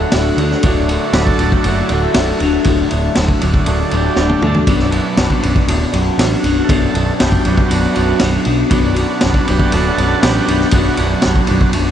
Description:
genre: psychedelic rock.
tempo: 119 BPM.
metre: 4/4.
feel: straight.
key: B minor.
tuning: A4 = 439 Hz.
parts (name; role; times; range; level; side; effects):
overdriven combo organ; sustained chords; 0.0-11.7 s; F#3 to B4; -21 LUFS; right 4 dB; none.
electric guitar through a small old amp; riff; 0.0-11.9 s; B1 to D4; -17 LUFS; left 2 dB; phaser.
overdriven picked electric bass; bass; 0.0-11.9 s; B0 to D2; -18 LUFS; equal; none.
vintage drum kit; drums; 0.1-11.9 s; kick drum, ride cymbal, snare drum, toms; -17 LUFS; equal; none.
room: moderate huge ambient reverb, RT60 7.3 s.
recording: dreamy mix soaked in reverb, nothing above 10.4 kHz.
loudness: -12 LUFS.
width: side -10 dB against mid.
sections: 0.0-11.9 A section.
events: transistor combo organ solo 0.0-11.9; drum fill 4.2-4.7.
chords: 0.0 Bm.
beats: 0.14 | 0.64 1.15 1.65 2.16 | 2.66 3.17 3.67 4.17 | 4.68 5.18 5.69 6.19 | 6.70 7.20 7.70 8.21 | 8.71 9.22 9.72 10.23 | 10.73 11.24 11.74.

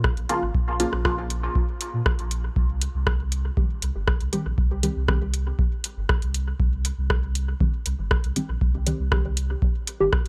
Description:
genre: dub techno.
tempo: 119 BPM.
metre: 4/4.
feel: straight.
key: C phrygian.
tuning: A4 = 441 Hz.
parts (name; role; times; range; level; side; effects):
soft dub sub bass; bass; 0.0-10.3 s; G1 to Bb2; -29 LUFS; equal; tube saturation, sidechain pumping.
booming analog drum machine; drums; 0.0-10.3 s; hi-hat, rim click; -30 LUFS; equal; dub echo.
electronic kick drum; drums; 0.0-10.2 s; none; -26 LUFS; equal; none.
filtered dub chord stab; stabs; 0.3-10.1 s; Db3 to G4; -30 LUFS; equal; phaser, sidechain pumping, dub echo.
room: little or no reverb.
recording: dry, gritty hardware recording.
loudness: -24 LUFS.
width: mono.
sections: 0.0-2.6 A section; 2.6-10.3 A section.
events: filter sweep on synth stab 2.6-10.3.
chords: 0.0 Bbm; 2.6 Cm.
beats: 0.04 | 0.55 1.05 1.55 2.06 | 2.56 3.07 3.57 4.08 | 4.58 5.08 5.59 6.09 | 6.60 7.10 7.61 8.11 | 8.61 9.12 9.62 10.13.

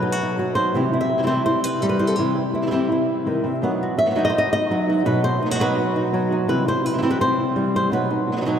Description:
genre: flamenco.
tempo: 167 BPM.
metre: 4/4.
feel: straight.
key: unclear.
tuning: A4 = 439 Hz.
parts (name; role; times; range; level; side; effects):
flamenco guitar; melody; 0.0-8.6 s; B2 to F#5; -20 LUFS; equal; none.
flamenco guitar; stabs; 0.0-8.6 s; B2 to F#4; -24 LUFS; right 1 dB; none.
room: wet cathedral reverb, RT60 5.8 s.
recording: in a vast, echoing space.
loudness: -18 LUFS.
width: side -8 dB against mid.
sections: 0.0-8.6 A section.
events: none.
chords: 0.0 B; 0.7 C; 3.6 B; 6.5 C; 7.9 B.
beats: 0.02 0.38 | 0.74 1.10 1.46 1.82 | 2.18 2.54 2.90 3.26 | 3.62 3.97 4.33 4.69 | 5.05 5.41 5.77 6.13 | 6.49 6.84 7.20 7.56 | 7.92 8.28.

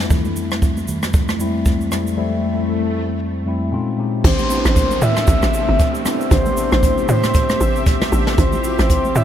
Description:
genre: amapiano.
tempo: 116 BPM.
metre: 4/4.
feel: swing 58% on 16ths.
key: A minor.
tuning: A4 = 441 Hz.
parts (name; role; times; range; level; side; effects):
mellow tine electric piano; accompaniment; 0.0-9.2 s; F2 to A4; -22 LUFS; left 2 dB; phaser.
jazz brush drum kit; drums; 0.0-9.2 s; crash cymbal, hi-hat, kick drum, rim click, shaker, snare drum; -18 LUFS; equal; none.
congas; percussion; 0.1-9.2 s; none; -28 LUFS; right 2 dB; none.
swell and downlifter; sound effects; 2.1-8.4 s; none; -29 LUFS; left 2 dB; none.
lush unison pad; sustained chords; 5.0-9.2 s; C3 to E5; -25 LUFS; right 1 dB; chorus.
tight log drum bass; bass; 4.2-9.2 s; G1 to A2; -19 LUFS; equal; none.
breathy flute-like synth lead; melody; 4.3-9.2 s; C5 to E5; -21 LUFS; equal; chorus, analog delay.
room: light reverb, studio ambience.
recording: none.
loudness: -15 LUFS.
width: side -10 dB against mid.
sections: 0.0-4.2 A section; 4.2-9.2 B section.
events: swell 2.1-4.2; drop 4.2-9.2.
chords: 0.0 Fmaj7; 3.7 Bbm11; 4.2 Am11; 8.4 Dm11.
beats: | 0.10 0.62 1.14 1.66 | 2.17 2.69 3.21 3.73 | 4.24 4.76 5.28 5.79 | 6.31 6.83 7.35 7.86 | 8.38 8.90.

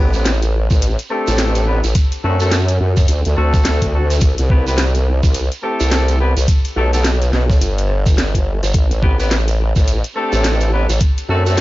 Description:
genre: glitch hop.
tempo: 106 BPM.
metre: 4/4.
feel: swing 60% on 16ths.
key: A dorian.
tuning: A4 = 440 Hz.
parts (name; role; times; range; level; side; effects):
mellow horn section; stabs; 0.0-11.6 s; A3 to B4; -22 LUFS; left 1 dB; sidechain pumping, low-pass filter, ping-pong delay.
formant-sweep wobble bass; bass; 0.0-11.6 s; G1 to F#2; -16 LUFS; equal; chorus, overdrive.
shekere; percussion; 0.1-11.6 s; none; -28 LUFS; right 5 dB; none.
drum and bass drum kit; drums; 0.3-11.6 s; hi-hat, rim click, snare drum; -22 LUFS; equal; none.
electronic kick drum; drums; 0.7-11.1 s; none; -14 LUFS; equal; none.
room: little or no reverb.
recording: nothing above 7.5 kHz.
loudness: -13 LUFS.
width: side -17 dB against mid.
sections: 0.0-11.6 A section.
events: filter sweep on horn section 0.0-11.6.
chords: 0.0 Am11; 2.0 D7; 4.2 Cmaj7; 6.5 Gmaj9; 8.7 Am11; 11.0 D7.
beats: 0.26 0.82 1.39 | 1.95 2.52 3.09 3.65 | 4.22 4.78 5.35 5.92 | 6.48 7.05 7.62 8.18 | 8.75 9.31 9.88 10.45 | 11.01 11.58.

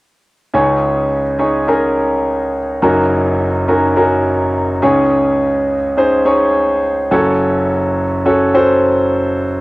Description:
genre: pop.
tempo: 105 BPM.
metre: 4/4.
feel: straight.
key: unclear.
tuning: A4 = 439 Hz.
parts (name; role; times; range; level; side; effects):
clear grand piano; accompaniment; 0.5-9.6 s; Gb1 to Db5; -12 LUFS; equal; cassette tape.
room: moderate studio reverb, RT60 0.5 s.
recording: home recording on cassette.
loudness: -12 LUFS.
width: side -20 dB against mid.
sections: 0.5-9.6 A section.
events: none.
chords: 0.5 Dbsus2; 2.8 Gb6; 4.8 Dbsus2; 7.1 Gbm.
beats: | 0.54 1.11 1.68 2.25 | 2.82 3.40 3.97 4.54 | 5.11 5.68 6.26 6.83 | 7.40 7.97 8.54 9.12.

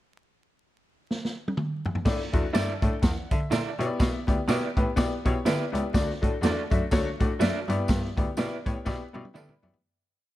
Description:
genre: uptempo 1960s-style soul.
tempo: 123 BPM.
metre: 4/4.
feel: swing 58% on 8ths.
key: unclear.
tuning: A4 = 440 Hz.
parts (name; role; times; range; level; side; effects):
vintage drum kit; drums; 1.1-9.8 s; crash cymbal, hi-hat, kick drum, snare drum, toms; -26 LUFS; equal; none.
bright upright piano; accompaniment; 2.1-9.8 s; A3 to B5; -30 LUFS; left 4 dB; none.
bright cello; bass; 2.1-9.7 s; C#2 to D3; -30 LUFS; equal; none.
tambourine; percussion; 2.1-9.5 s; none; -46 LUFS; left 5 dB; none.
electric guitar through a small old amp; stabs; 2.5-9.5 s; E4 to D5; -32 LUFS; right 6 dB; tremolo.
room: light reverb, small room ambience.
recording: dark, warm production, vinyl crackle.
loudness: -24 LUFS.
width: side -15 dB against mid.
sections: 0.1-2.1 pickup bar; 2.1-9.8 pre-chorus.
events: drum fill 1.1-2.1, 8.9-9.8; fade-out 7.9-9.8; upright piano fill 9.1-9.8.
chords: 0.1 N.C.; 2.1 Asus4; 3.8 G6; 6.0 D; 7.7 G6.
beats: | 0.13 0.61 1.09 1.58 | 2.06 2.55 3.03 3.52 | 4.00 4.49 4.98 5.46 | 5.95 6.44 6.92 7.41 | 7.90 8.38 8.87 9.36.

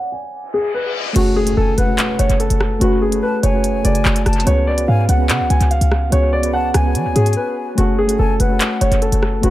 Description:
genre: hip hop, drill.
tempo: 145 BPM.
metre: 4/4.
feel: half-time.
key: F# minor.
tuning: A4 = 439 Hz.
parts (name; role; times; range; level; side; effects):
warm concert grand piano; melody; 0.0-9.5 s; F#4 to G#5; -20 LUFS; equal; low-pass filter, dub echo.
reverse cymbal and impact; sound effects; 0.5-2.8 s; none; -28 LUFS; left 1 dB; none.
soft electric-piano-like synth keys; accompaniment; 1.1-9.5 s; C#3 to C#5; -21 LUFS; right 1 dB; chorus, low-pass filter, dub echo.
short 808-style bass; bass; 1.2-9.5 s; E#1 to E#3; -16 LUFS; equal; none.
drill drum kit; drums; 1.2-9.5 s; crash cymbal, handclaps, hi-hat, rim click; -22 LUFS; equal; dub echo.
breathy hollow jazz flute; second line; 1.6-9.0 s; F#5 to A5; -27 LUFS; left 6 dB; dub echo.
room: digital ambience.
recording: echo-heavy mix, low-pass filter.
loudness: -14 LUFS.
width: side -14 dB against mid.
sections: 0.0-1.2 A section; 1.2-9.5 B section.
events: stop 0.0-1.2; filter sweep 0.0-1.2; reverse cymbal 0.5-1.2; impact 1.2-2.8; break 7.4-7.8.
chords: 0.0 N.C.; 1.2 F#madd9; 4.5 C#7sus4; 7.8 F#madd9.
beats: 0.33 0.74 | 1.16 1.57 1.99 2.40 | 2.81 3.23 3.64 4.05 | 4.47 4.88 5.29 5.71 | 6.12 6.54 6.95 7.36 | 7.78 8.19 8.61 9.02 | 9.43.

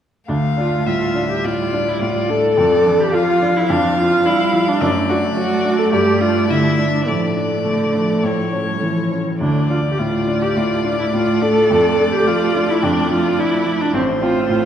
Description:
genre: quick classical-period movement for piano quartet.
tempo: 106 BPM.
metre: 4/4.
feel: rubato.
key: D minor.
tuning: A4 = 440 Hz.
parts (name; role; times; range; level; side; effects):
rich violin; melody; 0.3-14.7 s; C5 to F5; -23 LUFS; left 3 dB; none.
warm cello; second line; 0.3-14.7 s; D3 to A3; -24 LUFS; right 3 dB; none.
clear baby grand piano; accompaniment; 0.3-14.7 s; A1 to D4; -20 LUFS; left 1 dB; none.
warm viola; accompaniment; 0.3-14.7 s; A3 to A4; -18 LUFS; right 1 dB; none.
room: wet concert hall reverb, RT60 2.3 s.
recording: heard from further back in the room.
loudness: -15 LUFS.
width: side -9 dB against mid.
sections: 0.3-14.7 A section.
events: none.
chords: 0.3 Dm; 2.6 Dm/F; 4.8 D/F#; 5.9 G5; 7.1 Dm/A; 8.2 A; 9.4 D5; 11.7 Dm/F; 13.9 F/A.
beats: | 0.28 0.86 1.44 2.02 | 2.58 3.14 3.70 4.26 | 4.82 5.37 5.93 6.50 | 7.07 7.65 8.24 8.82 | 9.41 9.99 10.56 11.14 | 11.71 12.28 12.84 13.39 | 13.95 14.50.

